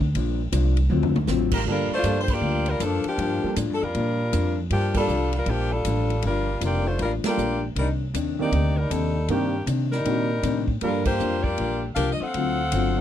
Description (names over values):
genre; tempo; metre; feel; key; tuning
jazz, big band swing; 157 BPM; 4/4; swing 64% on 8ths; G minor; A4 = 440 Hz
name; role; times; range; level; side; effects
archtop guitar, miked and amplified; accompaniment; 0.0-13.0 s; G2 to E#4; -29 LUFS; left 7 dB; none
upright bass; bass; 0.0-13.0 s; F1 to C3; -25 LUFS; right 1 dB; none
swinging big-band drum kit; drums; 0.0-12.8 s; crash cymbal, hi-hat, kick drum, ride cymbal, snare drum, toms; -32 LUFS; right 1 dB; none
dark trombone section; sustained chords; 1.5-1.6 s; G3 to Bb4; -29 LUFS; equal; none
edgy saxophone section; melody; 1.7-13.0 s; Eb3 to F#5; -26 LUFS; left 2 dB; none
clear baby grand piano; accompaniment; 1.7-13.0 s; Eb3 to A4; -28 LUFS; right 6 dB; none
room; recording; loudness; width
little or no reverb; dry, close 1970s-style studio recording; -21 LUFS; side -10 dB against mid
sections
0.0-1.7 A section; 1.7-13.0 B section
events
drum fill 0.9-1.3; band accent 2.2, 4.9, 7.2, 11.0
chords
0.1 Gm7; 0.9 D7#9; 1.7 Gm7; 7.8 Cm9; 10.8 Gm7; 12.3 D7#9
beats
| 0.14 0.52 0.90 1.28 | 1.66 2.04 2.42 2.80 | 3.18 3.56 3.94 4.33 | 4.71 5.09 5.47 5.85 | 6.23 6.62 7.00 7.38 | 7.76 8.14 8.52 8.90 | 9.29 9.67 10.05 10.43 | 10.81 11.19 11.57 11.96 | 12.34 12.72